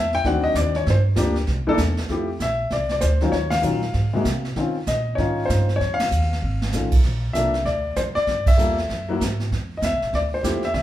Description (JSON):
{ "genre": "jazz piano trio", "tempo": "194 BPM", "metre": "4/4", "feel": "swing 63% on 8ths", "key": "unclear", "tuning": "A4 = 442 Hz", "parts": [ { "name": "warm grand piano", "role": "melody", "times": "0.0-10.8 s", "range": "C3 to G5", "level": "-22 LUFS", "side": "left 2 dB", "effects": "none" }, { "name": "upright bass", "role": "bass", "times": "0.0-10.8 s", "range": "G#1 to Db3", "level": "-24 LUFS", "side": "right 1 dB", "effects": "none" }, { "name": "jazz brush drum kit", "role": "drums", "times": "0.1-10.8 s", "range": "brushed snare drum, crash cymbal, hi-hat, kick drum, ride cymbal, snare drum", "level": "-25 LUFS", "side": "right 2 dB", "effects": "none" } ], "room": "moderate large studio reverb, RT60 0.8 s", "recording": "band playing live in one room", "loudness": "-19 LUFS", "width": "side -13 dB against mid", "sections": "0.0-2.1 A section; 2.1-10.8 B section", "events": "grand piano solo 0.0-2.1; band accent 3.5, 6.0, 8.4; drum fill 6.4-6.7", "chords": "0.2 D7b9; 0.9 Gm7; 1.5 C; 2.1 Fmaj7(no3); 3.3 Ebm9; 3.9 Ab; 4.6 Dbmaj9; 5.8 F7alt; 7.0 Bb; 8.3 Gm9; 8.9 Gb7sus2; 9.5 Fmaj7(no3)" }